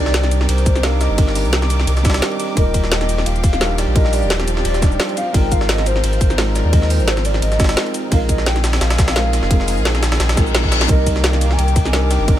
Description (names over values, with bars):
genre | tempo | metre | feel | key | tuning
liquid drum and bass | 173 BPM | 4/4 | swing 54% on 16ths | Eb major | A4 = 439 Hz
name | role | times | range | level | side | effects
hollow clarinet-like synth lead | melody | 0.0-12.4 s | C5 to Ab5 | -25 LUFS | left 1 dB | wide subtle chorus, ping-pong delay
felt-muted upright piano | accompaniment | 0.0-12.4 s | G3 to Eb5 | -23 LUFS | right 1 dB | ping-pong delay
rich symphonic string section | sustained chords | 0.0-12.4 s | Eb3 to D6 | -27 LUFS | left 1 dB | none
sub bass with octave | bass | 0.0-12.4 s | Eb1 to Eb2 | -18 LUFS | equal | none
drum and bass drum kit | drums | 0.1-12.4 s | cabasa, hi-hat, snare drum | -23 LUFS | equal | none
jungle sampler-style drum kit | drums | 0.1-12.4 s | hi-hat, ride cymbal, snare drum | -25 LUFS | right 1 dB | high-pass filter on cymbals, high-pass filter on snare, high-pass filter on hats, high-pass filter on room
electronic kick drum | drums | 0.7-12.4 s | none | -16 LUFS | equal | none
reverse cymbal | sound effects | 10.4-10.9 s | none | -27 LUFS | left 4 dB | none
room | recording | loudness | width
digital ambience | none | -14 LUFS | side -12 dB against mid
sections
0.0-12.4 A section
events
reverse cymbal 10.4-10.9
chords
0.0 Cm9; 2.6 Ebmaj9; 5.2 Ab69; 8.1 Bb9sus4; 10.9 Cm9